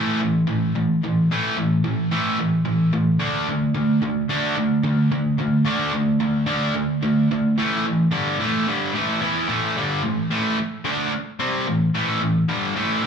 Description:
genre	rock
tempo	110 BPM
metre	4/4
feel	straight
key	unclear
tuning	A4 = 440 Hz
part	cranked stack guitar	solo	0.0-13.1 s	G2 to E4	-19 LUFS	equal	overdrive, tape echo
room	wet club reverb, RT60 0.6 s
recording	live gig heard through the venue's PA, club reverb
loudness	-19 LUFS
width	side -7 dB against mid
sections	0.0-7.6 A section; 7.6-13.1 B section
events	none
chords	0.0 A5; 3.2 D5; 7.6 A5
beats	0.47 | 1.02 1.57 2.11 2.66 | 3.21 3.75 4.30 4.84 | 5.39 5.94 6.48 7.03 | 7.57 8.12 8.66 9.21 | 9.75 10.30 10.84 11.39 | 11.93 12.48 13.02

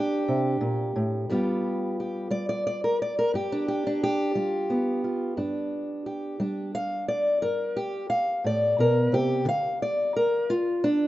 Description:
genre	acoustic country blues, solo or duo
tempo	59 BPM (dotted quarters)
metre	12/8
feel	straight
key	G mixolydian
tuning	A4 = 440 Hz
part	fingerpicked steel-string acoustic guitar	solo	0.0-11.1 s	G2 to F5	-24 LUFS	equal	none
room	light reverb, small room ambience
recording	rough home demo mix, nothing above 7.7 kHz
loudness	-24 LUFS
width	side -15 dB against mid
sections	0.0-11.1 A section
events	none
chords	0.0 C5; 1.3 G7; 9.5 Dm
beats	0.27 | 1.29 2.32 3.34 4.36 | 5.38 6.40 7.42 8.44 | 9.46 10.48

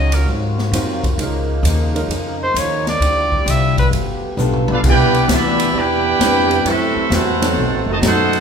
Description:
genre	jazz, big band swing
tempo	131 BPM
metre	4/4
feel	swing 67% on 8ths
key	unclear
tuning	A4 = 440 Hz
part	warm trumpet	melody	0.0-3.9 s	Bb4 to E5	-19 LUFS	equal	none
part	picked steel-string acoustic guitar	accompaniment	0.0-8.4 s	F#2 to A4	-25 LUFS	left 3 dB	none
part	warm trombone section	sustained chords	0.0-8.4 s	C3 to B4	-27 LUFS	left 1 dB	none
part	upright bass	bass	0.0-8.4 s	F#1 to Ab2	-20 LUFS	left 1 dB	none
part	swinging big-band drum kit	drums	0.1-8.4 s	crash cymbal, hi-hat, kick drum, ride cymbal, snare drum, toms	-21 LUFS	equal	none
part	warm grand piano	accompaniment	0.7-7.6 s	Gb3 to C5	-25 LUFS	right 1 dB	none
part	brilliant trumpet section	melody	4.7-8.4 s	C4 to B5	-17 LUFS	right 3 dB	none
part	warm trombone section	second line	4.7-8.4 s	D#3 to G4	-20 LUFS	right 2 dB	none
room	wet large studio reverb, RT60 1.3 s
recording	band playing live in one room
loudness	-14 LUFS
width	side -6 dB against mid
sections	0.0-4.8 A section; 4.8-8.4 B section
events	trumpet solo 0.0-4.8; drum fill 4.4-4.8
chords	0.3 Ab13; 1.2 Db69; 3.0 Dm11; 3.9 G9; 4.8 Cmaj9; 6.7 F#m7b5; 7.6 B7b9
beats	0.27 0.72 | 1.18 1.64 2.09 2.55 | 3.01 3.46 3.92 4.38 | 4.83 5.29 5.75 6.20 | 6.66 7.11 7.57 8.03

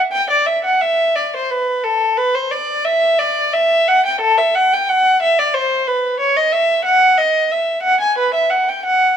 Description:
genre	classical, baroque-style suite movement for unaccompanied violin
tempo	90 BPM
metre	3/4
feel	rubato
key	E minor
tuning	A4 = 442 Hz
part	dark violin	solo	0.1-9.2 s	A4 to G#5	-13 LUFS	equal	none
room	light reverb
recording	none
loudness	-13 LUFS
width	side -8 dB against mid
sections	0.0-9.2 A section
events	none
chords	none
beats	| 0.11 0.80 1.49 | 2.17 2.86 3.54 | 4.22 4.88 5.53 | 6.18 6.84 7.49 | 8.16 8.84

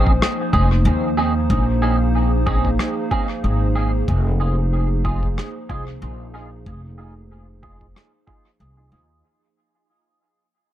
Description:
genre	ambient dub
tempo	93 BPM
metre	4/4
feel	swing 56% on 16ths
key	unclear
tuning	A4 = 439 Hz
part	warbly tape-like pad	sustained chords	0.0-9.2 s	F3 to C5	-24 LUFS	right 1 dB	chorus, built-in reverb
part	clean electric guitar	stabs	0.0-9.2 s	C4 to Ab4	-26 LUFS	right 3 dB	ensemble chorus, low-pass filter, dub echo
part	upright bass	bass	0.0-9.2 s	F1 to Eb2	-20 LUFS	equal	none
part	electronic kick drum	drums	0.1-8.4 s	none	-22 LUFS	equal	none
part	rim click	drums	0.2-8.1 s	none	-25 LUFS	left 1 dB	dub echo
room	light reverb, small room ambience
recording	echo-heavy mix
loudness	-17 LUFS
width	side -12 dB against mid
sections	0.0-9.2 A section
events	fade-out 0.0-9.2; filter sweep on upright bass 0.0-9.2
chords	0.0 Bbm11; 4.1 Fm7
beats	0.21 0.85 | 1.50 2.15 2.79 3.44 | 4.08 4.73 5.37 6.02 | 6.66 7.31 7.95 8.60

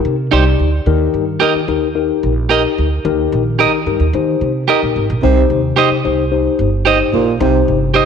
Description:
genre	soul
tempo	110 BPM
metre	4/4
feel	straight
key	unclear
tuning	A4 = 440 Hz
part	mellow tine electric piano	accompaniment	0.0-8.1 s	C3 to D5	-16 LUFS	left 7 dB	slow stereo tremolo
part	upright bass	bass	0.0-8.0 s	G1 to Eb3	-17 LUFS	right 2 dB	tube saturation
part	electric guitar at the edge of break-up	stabs	0.3-8.1 s	Eb4 to Eb5	-16 LUFS	right 8 dB	none
part	breathy baritone saxophone	riff	5.2-7.6 s	Bb2 to C3	-18 LUFS	right 9 dB	none
room	wet echo chamber reverb, RT60 1.9 s, small room ambience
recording	1960s-style stereo with parts hard left and right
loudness	-12 LUFS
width	side -7 dB against mid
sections	0.0-8.1 A section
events	none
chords	0.0 Cm; 0.9 Eb; 5.2 Cm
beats	0.32 | 0.87 1.41 1.96 2.50 | 3.05 3.59 4.14 4.68 | 5.23 5.77 6.32 6.86 | 7.40 7.95

